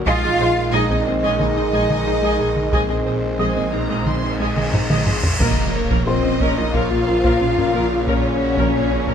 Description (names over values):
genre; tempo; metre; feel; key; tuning
cinematic, hybrid orchestral and electronic film score; 90 BPM; 4/4; straight; Bb minor; A4 = 440 Hz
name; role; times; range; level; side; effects
dark French horn section; sustained chords; 0.0-9.1 s; Bb3 to Eb5; -24 LUFS; left 5 dB; none
warm trombone section; sustained chords; 0.0-9.1 s; Bb2 to Ab3; -27 LUFS; right 8 dB; none
snarling distorted saw bass; bass; 0.0-9.1 s; Bb1; -26 LUFS; equal; distortion
felt-muted upright piano; texture; 0.0-9.1 s; Bb4 to Eb6; -33 LUFS; left 4 dB; none
warm studio violin section; melody; 0.1-9.1 s; Bb4 to C6; -29 LUFS; left 4 dB; none
warm symphonic violin section; second line; 0.1-9.1 s; F4 to F5; -29 LUFS; equal; none
rich symphonic viola section; accompaniment; 0.1-9.1 s; Db4 to Eb5; -28 LUFS; right 2 dB; none
thumb-piano-like synth pluck; arpeggios; 0.1-9.1 s; Ab3 to Bb4; -27 LUFS; left 3 dB; chorus, ping-pong delay
clear symphonic double bass section; bass; 0.1-9.1 s; Bb1; -26 LUFS; right 4 dB; none
dark symphonic cello section; bass; 0.1-9.1 s; Bb3 to F4; -25 LUFS; right 2 dB; none
solo taiko drums; drums; 0.1-9.1 s; none; -23 LUFS; equal; none
cymbal swell and impact; sound effects; 4.2-8.1 s; none; -26 LUFS; equal; none
room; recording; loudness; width
light reverb; none; -16 LUFS; side -8 dB against mid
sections
0.0-5.4 A section; 5.4-9.1 B section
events
cymbal swell 4.2-5.4; drum fill 4.7-5.4; impact 5.4-8.1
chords
0.1 Ab/Bb; 5.4 Bbm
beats
| 0.07 0.73 1.40 2.07 | 2.73 3.40 4.07 4.74 | 5.40 6.07 6.74 7.40 | 8.07 8.73